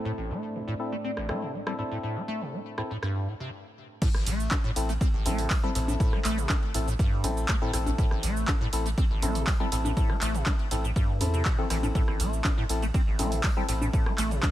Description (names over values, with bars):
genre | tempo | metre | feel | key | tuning
acid house | 121 BPM | 4/4 | straight | A minor | A4 = 440 Hz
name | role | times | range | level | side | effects
dark analog pad | sustained chords | 0.0-4.0 s | A3 to D5 | -38 LUFS | right 2 dB | chorus, sidechain pumping
percussive organ stab | stabs | 0.0-14.5 s | C4 to A4 | -34 LUFS | left 3 dB | chorus, vintage 12-bit sampler grit, ping-pong delay
liquid acid bass | riff | 0.1-14.5 s | A1 to C4 | -33 LUFS | equal | wide subtle chorus, sidechain pumping, ping-pong delay
punchy analog drum machine | drums | 1.2-14.5 s | congas, crash cymbal, handclaps, hi-hat, rim click, shaker | -32 LUFS | equal | none
breakbeat sampler-style drum kit | drums | 4.0-14.5 s | hi-hat, ride cymbal, snare drum | -45 LUFS | right 3 dB | none
electronic kick drum | drums | 4.0-14.5 s | none | -26 LUFS | equal | overdrive
saturated sub bass | bass | 4.3-14.4 s | A1 to E2 | -29 LUFS | equal | sidechain pumping
room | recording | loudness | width
digital ambience | none | -25 LUFS | side -14 dB against mid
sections
0.0-4.0 A section; 4.0-14.5 B section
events
break 3.5-4.0; drop 4.0-14.5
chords
0.0 Am